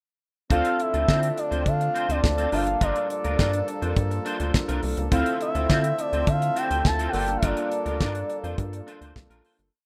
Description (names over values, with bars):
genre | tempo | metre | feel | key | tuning
early-eighties boogie funk | 104 BPM | 4/4 | straight | unclear | A4 = 440 Hz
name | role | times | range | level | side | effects
expressive portamento lead | melody | 0.5-9.2 s | D5 to A5 | -29 LUFS | equal | chorus
chorused polysynth | accompaniment | 0.5-9.7 s | Bb3 to A4 | -34 LUFS | equal | none
bright brass ensemble | sustained chords | 0.5-9.7 s | D3 to E5 | -39 LUFS | equal | none
electric guitar at the edge of break-up | riff | 0.5-9.6 s | C4 to C5 | -35 LUFS | equal | ensemble chorus
rubbery square bass | bass | 0.5-9.7 s | G1 to D3 | -30 LUFS | equal | none
damped 70s drum kit | drums | 0.5-9.7 s | hi-hat, kick drum, snare drum | -27 LUFS | equal | none
room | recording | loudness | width
light reverb, small room ambience | rough home demo mix | -24 LUFS | mono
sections
0.5-9.7 verse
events
fade-out 7.4-9.7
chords
0.5 Dm7; 2.5 Gm7; 5.1 Dm7; 7.1 Gm7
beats
| 0.50 1.08 1.66 2.23 | 2.81 3.39 3.96 4.54 | 5.12 5.70 6.27 6.85 | 7.43 8.00 8.58 9.16